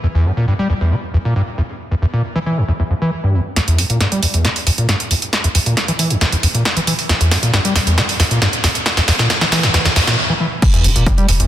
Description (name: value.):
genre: driving peak-time techno.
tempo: 136 BPM.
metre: 4/4.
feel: straight.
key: unclear.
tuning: A4 = 440 Hz.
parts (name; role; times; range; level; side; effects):
overdriven acid bass; riff; 0.0-11.5 s; E2 to G3; -16 LUFS; equal; wide subtle chorus, sidechain pumping.
techno drum kit; drums; 3.6-11.5 s; crash cymbal, hi-hat, snare drum; -16 LUFS; right 1 dB; high-pass filter on snare, high-pass filter on hats, high-pass filter on cymbals, high-pass filter on room.
electronic kick drum; drums; 10.6-11.2 s; none; -13 LUFS; equal; overdrive.
saturated sub bass; bass; 10.8-11.5 s; E1; -15 LUFS; equal; overdrive, sidechain pumping, low-pass filter.
room: moderate lush hall reverb, RT60 1.8 s.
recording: dense, heavily limited modern master.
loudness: -13 LUFS.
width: side -12 dB against mid.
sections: 0.0-3.6 A section; 3.6-10.6 B section.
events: build-up 3.6-10.6; drum fill 3.6-10.2; filter sweep on acid bass 3.6-10.6; break 10.2-10.6.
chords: 0.0 Edim; 10.6 Em.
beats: | 0.04 0.48 0.92 1.36 | 1.80 2.24 2.68 3.12 | 3.56 4.01 4.45 4.89 | 5.33 5.77 6.21 6.65 | 7.09 7.54 7.98 8.42 | 8.86 9.30 9.74 10.18 | 10.62 11.06.